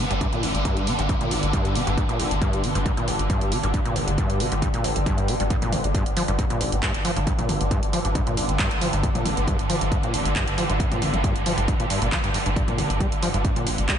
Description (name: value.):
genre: driving peak-time techno.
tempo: 136 BPM.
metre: 4/4.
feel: straight.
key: G minor.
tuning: A4 = 440 Hz.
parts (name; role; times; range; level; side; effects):
overdriven acid bass; riff; 0.0-14.0 s; G1 to G3; -26 LUFS; equal; analog chorus, vintage 12-bit sampler grit, sidechain pumping, diffuse ambient delay.
swarming drone; drone; 0.0-14.0 s; G2 to D3; -27 LUFS; equal; built-in reverb, analog chorus, sidechain pumping.
warm sub bass; bass; 0.1-13.9 s; G1; -30 LUFS; equal; tube saturation, sidechain pumping, low-pass filter.
techno drum kit; drums; 0.1-14.0 s; handclaps, hi-hat, toms; -29 LUFS; right 1 dB; none.
electronic kick drum; drums; 0.2-14.0 s; none; -26 LUFS; equal; none.
room: moderate lush hall reverb, RT60 1.8 s, digital ambience.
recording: dreamy mix soaked in reverb, nothing above 10.4 kHz.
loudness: -21 LUFS.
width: side -9 dB against mid.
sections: 0.0-14.0 A section.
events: none.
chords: 0.0 Gm.